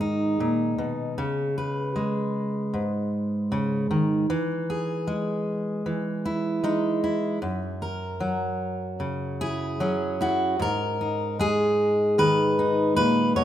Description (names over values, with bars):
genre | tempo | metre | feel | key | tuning
folk, solo fingerstyle acoustic guitar | 76 BPM | 4/4 | straight | unclear | A4 = 440 Hz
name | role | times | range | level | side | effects
fingerpicked steel-string acoustic guitar | solo | 0.0-13.4 s | F#2 to C#5 | -23 LUFS | equal | none
room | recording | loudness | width
light reverb | minimal, uncompressed stereo recording | -23 LUFS | side -11 dB against mid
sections
0.0-10.6 A section; 10.6-13.4 B section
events
none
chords
0.0 G#m; 1.2 C#5; 4.3 Emaj7; 7.4 F#7; 10.6 G#m